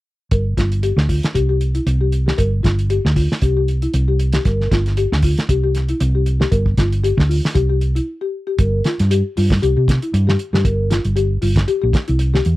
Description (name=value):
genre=afrobeat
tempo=116 BPM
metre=4/4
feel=swing 55% on 16ths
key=G dorian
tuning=A4 = 438 Hz
part: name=vibraphone with soft mallets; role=arpeggios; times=0.3-12.4 s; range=E4 to Bb4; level=-22 LUFS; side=left 4 dB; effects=none
part: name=hollow-body short-scale fingered electric bass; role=bass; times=0.3-12.6 s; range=G1 to C3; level=-16 LUFS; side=equal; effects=none
part: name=cloth-damped thuddy drum kit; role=drums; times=0.3-12.6 s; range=hi-hat, kick drum, snare drum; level=-19 LUFS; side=right 1 dB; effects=none
room=little or no reverb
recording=dry, close 1970s-style studio recording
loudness=-15 LUFS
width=side -17 dB against mid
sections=0.3-8.6 A section; 8.6-12.6 B section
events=break 8.1-8.6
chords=0.3 G7(no3); 1.4 C5; 2.4 G7(no3); 3.4 C5; 4.5 Gm7; 5.5 C5; 6.5 G7(no3); 7.6 C5; 8.6 Gm7; 9.6 C5; 10.6 Gm7; 11.7 C